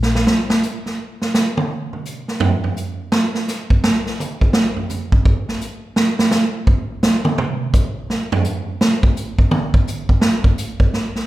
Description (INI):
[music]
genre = jazz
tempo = 169 BPM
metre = 4/4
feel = swing 64% on 8ths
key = none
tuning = none
[part]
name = swinging big-band drum kit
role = drums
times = 0.0-11.2 s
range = hi-hat, kick drum, snare drum, toms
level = -16 LUFS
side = right 1 dB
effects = none
[sound]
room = moderate recital hall reverb, RT60 1.5 s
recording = heard from further back in the room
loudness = -16 LUFS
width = side -16 dB against mid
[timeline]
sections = 0.3-11.3 A section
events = drum fill 0.0; drum solo 0.3-11.3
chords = none